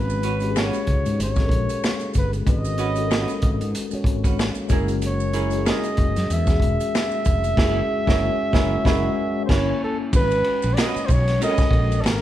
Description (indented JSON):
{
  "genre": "R&B, neo-soul",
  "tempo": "94 BPM",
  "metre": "4/4",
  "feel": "swing 56% on 16ths",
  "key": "G# minor",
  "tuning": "A4 = 440 Hz",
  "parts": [
    { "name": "warm flugelhorn", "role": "melody", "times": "0.0-12.2 s", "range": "A4 to E5", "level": "-26 LUFS", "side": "right 1 dB", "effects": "none" },
    { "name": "mellow tine electric piano", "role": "accompaniment", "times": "0.0-12.2 s", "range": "G#3 to C#5", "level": "-26 LUFS", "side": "left 4 dB", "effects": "medium stereo tremolo" },
    { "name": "mellow fretless electric bass", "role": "bass", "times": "0.0-12.2 s", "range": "E1 to G#2", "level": "-25 LUFS", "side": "equal", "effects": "none" },
    { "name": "maracas and finger snaps", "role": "percussion", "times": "0.1-12.2 s", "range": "none", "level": "-37 LUFS", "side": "left 1 dB", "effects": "none" },
    { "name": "archtop guitar, miked and amplified", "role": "second line", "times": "0.2-11.6 s", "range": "C#4 to B4", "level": "-30 LUFS", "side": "right 7 dB", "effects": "none" },
    { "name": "crunchy breakbeat drum kit", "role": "drums", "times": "0.2-12.2 s", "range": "crash cymbal, hi-hat, kick drum, ride cymbal, snare drum", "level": "-22 LUFS", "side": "equal", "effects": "none" }
  ],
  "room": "light reverb",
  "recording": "none",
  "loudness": "-19 LUFS",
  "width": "side -12 dB against mid",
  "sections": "0.0-10.1 A section; 10.1-12.2 B section",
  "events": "band accent 7.6-10.1",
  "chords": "0.0 G#m11; 4.7 F#9; 9.5 Gdim7; 10.1 G#m11"
}